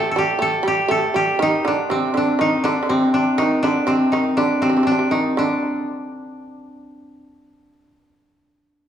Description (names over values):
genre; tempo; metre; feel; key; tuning
japanese traditional, Japanese chamber music; 60 BPM; 4/4; rubato; D in sen; A4 = 439 Hz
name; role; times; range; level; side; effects
koto; melody; 0.0-8.9 s; C4 to A4; -19 LUFS; left 1 dB; none
shamisen; second line; 0.0-8.9 s; C3 to A3; -22 LUFS; right 3 dB; none
room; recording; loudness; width
wet recital hall reverb, RT60 1.5 s; recorded in a church or concert hall, studio reverb; -16 LUFS; side -9 dB against mid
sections
0.0-8.9 A section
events
none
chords
none